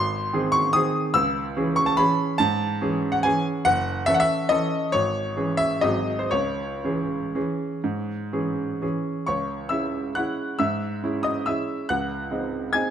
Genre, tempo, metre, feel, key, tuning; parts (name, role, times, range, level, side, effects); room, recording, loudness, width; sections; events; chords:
classical, piano waltz; 117-158 BPM; 3/4; rubato; C# minor; A4 = 440 Hz
clear baby grand piano; solo; 0.0-12.9 s; F#1 to G#6; -22 LUFS; equal
moderate scoring stage reverb, RT60 1.8 s; close, detailed microphones; -22 LUFS; side -9 dB against mid
0.0-9.3 A section; 9.3-12.9 B section
0.0 G#; 1.2 C#m; 3.7 F#m7; 4.9 C#m/G#; 5.8 G#7; 6.3 C#m; 11.9 G#7/C#